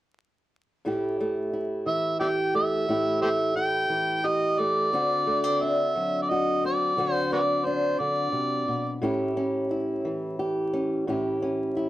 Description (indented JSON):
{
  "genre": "acoustic country blues, solo or duo",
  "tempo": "59 BPM (dotted quarters)",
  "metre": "12/8",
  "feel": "straight",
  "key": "unclear",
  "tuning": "A4 = 435 Hz",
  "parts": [
    { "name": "fingerpicked old ladder-braced acoustic guitar", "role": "accompaniment", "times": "0.8-11.9 s", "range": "A2 to G4", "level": "-26 LUFS", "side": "equal", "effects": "none" },
    { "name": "overdriven harmonica", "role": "melody", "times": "1.9-9.0 s", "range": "F#4 to G5", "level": "-25 LUFS", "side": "right 1 dB", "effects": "none" }
  ],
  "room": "moderate studio reverb, RT60 0.6 s",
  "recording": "vinyl crackle",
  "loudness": "-23 LUFS",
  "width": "side -15 dB against mid",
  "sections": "0.9-11.9 A section",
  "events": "none",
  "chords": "0.9 A5; 4.9 D7; 9.0 A7",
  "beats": "| 0.85 1.87 2.89 3.91 | 4.93 5.95 6.98 8.00 | 9.02 10.04 11.07"
}